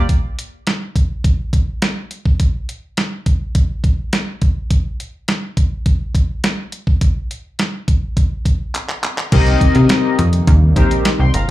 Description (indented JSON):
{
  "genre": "early-eighties boogie funk",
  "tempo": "104 BPM",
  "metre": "4/4",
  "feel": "straight",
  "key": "C minor",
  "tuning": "A4 = 441 Hz",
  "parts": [
    { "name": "chorused polysynth", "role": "accompaniment", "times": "0.0, 9.3-11.5 s", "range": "C4 to C6", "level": "-18 LUFS", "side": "left 4 dB", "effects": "plate reverb, slapback echo" },
    { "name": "brassy analog pad", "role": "sustained chords", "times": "0.0-0.1, 9.3-11.5 s", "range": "C3 to Eb4", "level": "-26 LUFS", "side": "equal", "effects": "chorus, tremolo, plate reverb" },
    { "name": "plucky analog bass", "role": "bass", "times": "0.0, 9.3-11.5 s", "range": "G1 to C3", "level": "-13 LUFS", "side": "equal", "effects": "none" },
    { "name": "detuned 8-bit digital drum machine", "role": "drums", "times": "0.1-11.5 s", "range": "crash cymbal, handclaps, hi-hat, kick drum, snare drum", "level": "-16 LUFS", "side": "equal", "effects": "none" }
  ],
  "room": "light reverb",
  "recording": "live gig heard through the venue's PA, club reverb",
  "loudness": "-15 LUFS",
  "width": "side -16 dB against mid",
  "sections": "0.1-9.3 A section; 9.3-11.5 B section",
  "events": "drum fill 8.7-9.3",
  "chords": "0.1 N.C.; 9.3 Cm7"
}